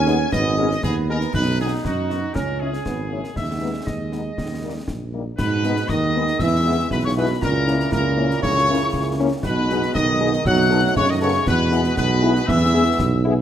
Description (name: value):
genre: military-style march for wind band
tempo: 118 BPM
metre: 2/4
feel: straight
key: G# minor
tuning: A4 = 441 Hz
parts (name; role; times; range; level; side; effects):
- brilliant trumpet section; melody; 0.0-13.2 s; F#4 to G#5; -25 LUFS; left 1 dB; none
- dark trombone section; sustained chords; 0.0-13.3 s; G#3 to E4; -29 LUFS; right 4 dB; none
- dark tuba; bass; 0.0-13.4 s; G#1 to G#2; -22 LUFS; right 2 dB; none
- mellow French horn section; accompaniment; 0.1-13.3 s; G3 to A4; -27 LUFS; left 5 dB; none
- concert snare drum, concert bass drum and clash cymbals; drums; 0.1-13.2 s; none; -29 LUFS; left 1 dB; none
- piccolo; second line; 5.4-13.3 s; A#5 to F#6; -26 LUFS; left 6 dB; none
- warm euphonium; second line; 5.4-13.2 s; A#2 to F#3; -25 LUFS; right 4 dB; none
room: moderate recital hall reverb, RT60 1.5 s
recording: none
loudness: -18 LUFS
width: side -10 dB against mid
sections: 0.0-5.4 A section; 5.4-13.4 B section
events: none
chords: 0.0 G#m; 1.3 B; 2.4 C#m; 3.4 G#m/D#; 4.4 D#; 5.4 G#m; 6.4 E; 7.4 A#dim/C#; 9.4 G#m/B; 10.5 B7; 11.5 E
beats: | 0.33 0.83 | 1.34 1.85 | 2.36 2.86 | 3.37 3.88 | 4.38 4.89 | 5.40 5.90 | 6.41 6.92 | 7.42 7.93 | 8.43 8.94 | 9.45 9.95 | 10.46 10.96 | 11.47 11.98 | 12.48 12.99